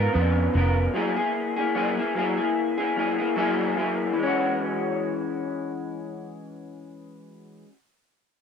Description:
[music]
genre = indie pop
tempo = 75 BPM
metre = 4/4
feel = swing 55% on 16ths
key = E major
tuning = A4 = 440 Hz
[part]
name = electric guitar through a small old amp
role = accompaniment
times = 0.0-7.8 s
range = C#3 to A#4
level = -24 LUFS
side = left 2 dB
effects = analog chorus, vibrato effect
[part]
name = vintage muted picked electric bass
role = bass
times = 0.0-0.9 s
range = E#1 to E#2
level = -22 LUFS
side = right 1 dB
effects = none
[sound]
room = light reverb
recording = dry, close 1970s-style studio recording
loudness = -23 LUFS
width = side -7 dB against mid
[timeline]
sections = 0.0-4.2 A section; 4.2-7.4 B section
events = none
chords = 0.0 C#6; 1.0 F#9; 4.2 E69

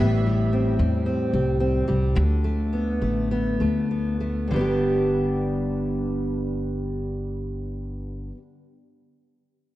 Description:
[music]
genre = pop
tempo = 96-113 BPM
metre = 4/4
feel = straight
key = G major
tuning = A4 = 438 Hz
[part]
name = fingerpicked steel-string acoustic guitar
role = accompaniment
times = 0.0-8.4 s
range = G2 to G4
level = -24 LUFS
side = equal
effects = wide subtle chorus
[part]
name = bowl-back mandolin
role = arpeggios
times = 0.0-0.6 s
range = G3 to E5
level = -36 LUFS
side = right 2 dB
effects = tape echo
[part]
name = upright bass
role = bass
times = 0.0-8.3 s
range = G1 to E2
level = -26 LUFS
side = equal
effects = none
[sound]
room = wet lush hall reverb, RT60 2.5 s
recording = dreamy mix soaked in reverb, cassette tape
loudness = -22 LUFS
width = side -15 dB against mid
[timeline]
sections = 0.0-4.5 A section; 4.5-9.5 B section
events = slowing down 0.0-4.5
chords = 0.0 Am7; 2.2 D5; 4.5 G

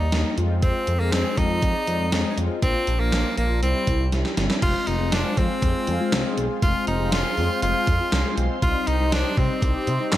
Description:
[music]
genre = synth-pop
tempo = 120 BPM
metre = 4/4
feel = straight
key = C minor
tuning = A4 = 440 Hz
[part]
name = edgy tenor saxophone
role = melody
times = 0.0-10.2 s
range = Bb3 to F4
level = -26 LUFS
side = equal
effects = slapback echo
[part]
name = mellow synth brass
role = accompaniment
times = 0.0-10.2 s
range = G3 to D5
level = -28 LUFS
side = left 3 dB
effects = chorus
[part]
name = smooth gliding synth bass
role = bass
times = 0.0-10.2 s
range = F1 to C3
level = -24 LUFS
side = equal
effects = none
[part]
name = gated 80s digital drum machine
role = drums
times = 0.1-10.2 s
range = crash cymbal, handclaps, hi-hat, kick drum, snare drum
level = -24 LUFS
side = equal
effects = gated reverb, gated reverb snare
[part]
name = phased analog pad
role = sustained chords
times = 5.0-10.2 s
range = G4 to C6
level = -32 LUFS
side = equal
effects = phaser, chorus
[sound]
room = light reverb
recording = none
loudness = -20 LUFS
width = side -13 dB against mid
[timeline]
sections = 0.0-4.6 A section; 4.6-10.2 B section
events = drum fill 4.1-4.6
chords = 0.4 Fm7; 2.6 Bb; 3.6 C; 4.6 Fm; 8.6 Cm

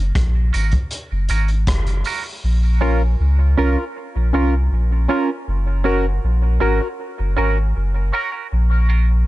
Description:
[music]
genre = dub reggae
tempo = 79 BPM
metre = 4/4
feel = straight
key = Bb minor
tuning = A4 = 440 Hz
[part]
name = warm sub bass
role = bass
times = 0.0-9.2 s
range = Gb1 to Db2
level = -16 LUFS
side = equal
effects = none
[part]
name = crunchy breakbeat drum kit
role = drums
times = 0.2-2.2 s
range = hi-hat, kick drum, rim click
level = -22 LUFS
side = equal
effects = none
[part]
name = semi-hollow electric guitar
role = accompaniment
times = 0.5-9.1 s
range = Db4 to Bb4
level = -25 LUFS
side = right 8 dB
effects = tremolo, high-pass filter, dub echo
[part]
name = tambourine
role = percussion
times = 0.5-2.2 s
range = none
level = -40 LUFS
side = right 4 dB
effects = none
[part]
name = percussive organ stab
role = stabs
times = 2.8-8.3 s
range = Db4 to Bb4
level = -24 LUFS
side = left 2 dB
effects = chorus, high-pass filter, dub echo
[sound]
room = studio reverb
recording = dark, warm production, nothing above 10.7 kHz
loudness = -16 LUFS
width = side -17 dB against mid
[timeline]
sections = 0.0-2.4 A section; 2.4-9.3 B section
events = break 0.0-2.4; filter sweep 5.5-9.3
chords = 0.0 Gb; 2.4 Bbm; 5.5 Gb; 8.5 Bbm

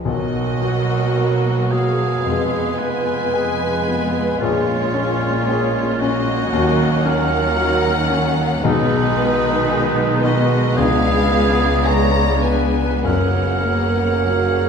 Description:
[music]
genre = classical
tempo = 56 BPM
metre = 4/4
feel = rubato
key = F# major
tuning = A4 = 439 Hz
[part]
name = clear concert grand piano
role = melody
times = 0.0-14.7 s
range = A#1 to A#4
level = -21 LUFS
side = left 2 dB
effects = none
[part]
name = warm symphonic violin section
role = melody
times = 0.1-14.7 s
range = B4 to A#5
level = -26 LUFS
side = left 3 dB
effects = none
[part]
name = clear clarinet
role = second line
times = 0.1-14.7 s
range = A#4 to D5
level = -29 LUFS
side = equal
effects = none
[part]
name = large flute ensemble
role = second line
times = 0.1-14.7 s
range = D#4 to C#5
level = -26 LUFS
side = right 3 dB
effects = none
[part]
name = mellow oboe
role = second line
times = 0.1-14.7 s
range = D#4 to C#5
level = -25 LUFS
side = right 2 dB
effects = none
[part]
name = warm symphonic violin section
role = second line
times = 0.1-14.7 s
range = A#3 to F#4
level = -27 LUFS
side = left 2 dB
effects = none
[part]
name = warm bassoon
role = accompaniment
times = 0.1-14.7 s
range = F#3 to B3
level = -28 LUFS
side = right 3 dB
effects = none
[part]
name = warm symphonic viola section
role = accompaniment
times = 0.1-14.7 s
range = C#3 to A#3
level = -26 LUFS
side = right 3 dB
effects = none
[part]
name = warm French horn section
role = sustained chords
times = 0.1-13.5 s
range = F#3 to A#4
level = -27 LUFS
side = left 3 dB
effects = none
[part]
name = warm studio double bass section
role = bass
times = 0.1-14.7 s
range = F1 to D#2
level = -25 LUFS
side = right 2 dB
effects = none
[part]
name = warm symphonic cello section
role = bass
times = 0.1-14.7 s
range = C#2 to D#3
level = -26 LUFS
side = right 3 dB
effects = none
[part]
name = timpani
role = percussion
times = 10.8-14.7 s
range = F#2 to C#3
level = -28 LUFS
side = left 2 dB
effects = none
[sound]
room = wet recital hall reverb, RT60 1.7 s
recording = minimal, uncompressed stereo recording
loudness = -15 LUFS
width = side -6 dB against mid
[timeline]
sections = 0.0-14.7 A section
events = none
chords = 0.1 Bmaj7; 2.3 Fdim; 4.4 A#m7; 6.5 D#m7; 8.6 G#m/B; 10.8 C#7b9; 13.1 F#

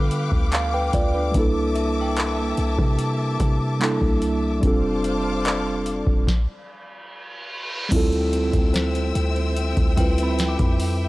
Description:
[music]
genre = contemporary R&B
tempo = 73 BPM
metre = 4/4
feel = straight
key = D minor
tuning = A4 = 440 Hz
[part]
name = mellow tine electric piano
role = accompaniment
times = 0.0-11.1 s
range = G3 to G5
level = -24 LUFS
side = right 1 dB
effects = slow stereo tremolo
[part]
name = warm symphonic string section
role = sustained chords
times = 0.0-11.1 s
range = Bb3 to E6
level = -30 LUFS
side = left 3 dB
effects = sidechain pumping
[part]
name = warm 808-style bass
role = bass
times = 0.0-11.1 s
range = F1 to D3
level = -25 LUFS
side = equal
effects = none
[part]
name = booming analog drum machine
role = drums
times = 0.1-11.0 s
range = crash cymbal, handclaps, hi-hat, kick drum, rim click, snare drum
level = -22 LUFS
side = equal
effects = none
[part]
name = synth chime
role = texture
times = 1.8-11.1 s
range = C5 to D6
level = -36 LUFS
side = left 2 dB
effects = ensemble chorus, analog delay
[part]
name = reverse cymbal and downlifter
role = sound effects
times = 6.7-11.1 s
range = none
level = -34 LUFS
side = right 1 dB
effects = none
[sound]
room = little or no reverb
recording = dry, gritty hardware recording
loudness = -19 LUFS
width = side -19 dB against mid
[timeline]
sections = 0.0-7.9 A section; 7.9-11.1 B section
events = tine electric piano fill 0.1-1.3; stop 6.3-7.9; reverse cymbal 6.7-7.9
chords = 0.0 G7/D; 1.3 C13; 4.6 F6; 7.1 N.C.; 7.9 Dm11

